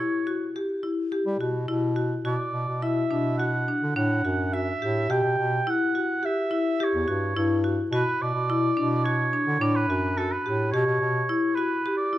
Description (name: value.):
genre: contemporary instrumental, chamber music in an uneven meter.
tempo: 106 BPM.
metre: 5/4.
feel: straight.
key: B minor.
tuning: A4 = 440 Hz.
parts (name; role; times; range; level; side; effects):
warm oboe; melody; 0.0-12.2 s; A4 to G5; -28 LUFS; right 3 dB; none.
marimba with hard mallets; arpeggios; 0.0-12.2 s; D4 to G4; -26 LUFS; left 2 dB; none.
bright bass clarinet; bass; 1.3-11.2 s; E2 to G3; -28 LUFS; equal; none.
room: moderate recital hall reverb, RT60 1.5 s.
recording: none.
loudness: -23 LUFS.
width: side -14 dB against mid.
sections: 0.0-12.2 A section.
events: none.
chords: 0.0 C#m7b5; 2.3 Bm7; 5.1 Em69; 7.9 Bm9; 10.7 C#m7b5/B.